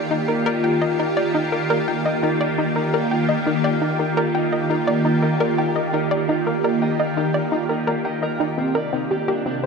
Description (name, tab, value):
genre	ambient, sequencer-driven space music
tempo	85 BPM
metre	4/4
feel	straight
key	unclear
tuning	A4 = 440 Hz
part	evolving wavetable pad	sustained chords	0.0-9.7 s	C3 to D5	-21 LUFS	equal	ensemble chorus, built-in reverb, phaser
part	electric guitar at the edge of break-up	arpeggios	0.0-9.7 s	Bb3 to Eb5	-28 LUFS	moving between left 1 dB and right 5 dB	auto-pan, ping-pong delay
part	hollow square pluck	riff	0.1-9.7 s	C4 to G5	-23 LUFS	left 1 dB	chorus, ping-pong delay
room	wet huge ambient reverb, RT60 7.7 s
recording	in a vast, echoing space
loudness	-18 LUFS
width	side -4 dB against mid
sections	0.0-9.7 A section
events	none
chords	0.0 Ebadd9; 8.6 Cmadd9